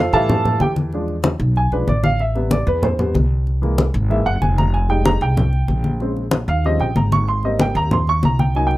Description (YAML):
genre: Afro-Cuban jazz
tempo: 189 BPM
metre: 4/4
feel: straight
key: F minor from 4.7 s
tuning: A4 = 439 Hz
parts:
  - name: warm upright piano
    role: accompaniment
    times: 0.0-8.8 s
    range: C3 to Db6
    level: -20 LUFS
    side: right 1 dB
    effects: none
  - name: upright bass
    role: bass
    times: 0.0-8.8 s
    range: F1 to A2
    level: -19 LUFS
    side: equal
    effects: none
  - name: congas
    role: percussion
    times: 0.1-8.8 s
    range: none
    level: -20 LUFS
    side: left 1 dB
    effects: none
room: light reverb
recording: rough home demo mix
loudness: -16 LUFS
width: side -16 dB against mid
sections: 0.0-4.7 A section; 4.7-8.8 A section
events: upright piano solo 0.0-8.8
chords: 0.0 Fmaj7; 0.9 E7b9; 2.2 Am9; 3.5 Caug7; 4.7 Fm9; 6.0 Bbm9; 6.6 Eb13; 7.3 Abmaj7